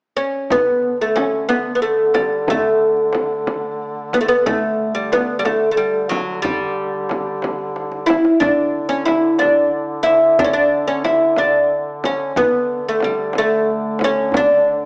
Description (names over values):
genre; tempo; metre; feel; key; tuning
Persian modal ensemble; 61 BPM (dotted quarters); 6/8; straight; unclear; A4 = 439 Hz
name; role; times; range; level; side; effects
oud; melody; 0.2-14.9 s; F#3 to E4; -18 LUFS; equal; none
warm duduk; drone; 0.5-14.9 s; D3; -31 LUFS; equal; none
frame drum; percussion; 0.5-14.5 s; none; -27 LUFS; equal; none
tombak; percussion; 0.5-14.7 s; none; -34 LUFS; equal; none
room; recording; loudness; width
light reverb; small speaker sound; -18 LUFS; mono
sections
0.5-14.9 A section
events
drum fill 7.7-8.4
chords
none